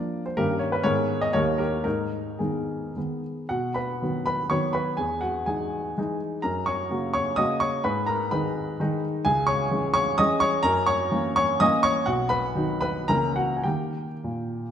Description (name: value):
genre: classical, romantic triple-time dance for piano with dotted rhythms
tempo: 98-135 BPM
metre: 3/4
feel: rubato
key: G# minor, B major from 3.5 s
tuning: A4 = 440 Hz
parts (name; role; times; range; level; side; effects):
- dark baby grand piano; solo; 0.0-14.7 s; B1 to D#6; -23 LUFS; equal; none
room: wet scoring stage reverb, RT60 1.7 s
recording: none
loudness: -23 LUFS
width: side -9 dB against mid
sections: 0.0-3.5 A section; 3.5-14.7 B section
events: none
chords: 0.4 D#7/G; 0.8 G#m; 1.3 D#7; 1.8 G#m; 3.5 B; 5.0 Emaj7; 6.4 F#; 7.8 G#m; 9.3 C#m; 10.6 F#7; 12.1 B; 13.1 A#dim/C#; 13.6 D#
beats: | 0.38 0.85 1.33 | 1.85 2.40 2.96 | 3.49 4.02 4.50 | 4.98 5.48 5.98 | 6.44 6.90 7.37 | 7.84 8.32 8.80 | 9.26 9.71 10.19 | 10.64 11.12 11.61 | 12.07 12.56 13.09 | 13.65 14.24